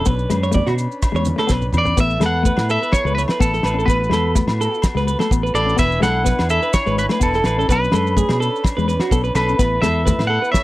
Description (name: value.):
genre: highlife guitar band.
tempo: 126 BPM.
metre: 4/4.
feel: swing 53% on 16ths.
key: A major.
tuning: A4 = 440 Hz.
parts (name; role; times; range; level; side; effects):
clean electric guitar; accompaniment; 0.0-10.2 s; G#3 to C#4; -24 LUFS; left 6 dB; tremolo.
combo organ; sustained chords; 0.0-10.6 s; B3 to G#5; -31 LUFS; equal; spring reverb.
clean electric guitar; arpeggios; 0.0-10.6 s; F#4 to D5; -23 LUFS; right 2 dB; slapback echo.
fingered electric bass; bass; 0.1-10.4 s; E1 to B2; -21 LUFS; equal; none.
cloth-damped thuddy drum kit; drums; 0.1-10.6 s; hi-hat, kick drum, rim click, snare drum, toms; -20 LUFS; equal; none.
congas; percussion; 0.1-1.9, 9.6-10.6 s; none; -27 LUFS; equal; none.
maracas; percussion; 0.1-10.6 s; none; -33 LUFS; right 7 dB; none.
agogo bells; percussion; 0.3-10.6 s; none; -29 LUFS; left 4 dB; none.
clean electric guitar; melody; 1.8-10.6 s; A4 to F#5; -21 LUFS; equal; none.
room: little or no reverb.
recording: dry, close 1970s-style studio recording.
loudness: -15 LUFS.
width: side -17 dB against mid.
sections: 0.0-2.0 A section; 2.0-10.6 B section.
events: clean electric guitar solo 0.0-2.0; drum fill 1.5-2.0.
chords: 0.1 Bmadd9; 2.0 Asus2; 5.8 E7; 7.7 Bmadd9; 9.6 Asus2.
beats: | 0.07 0.55 1.03 1.50 | 1.98 2.46 2.94 3.41 | 3.89 4.37 4.84 5.32 | 5.79 6.27 6.74 7.22 | 7.69 8.17 8.64 9.12 | 9.59 10.06 10.54.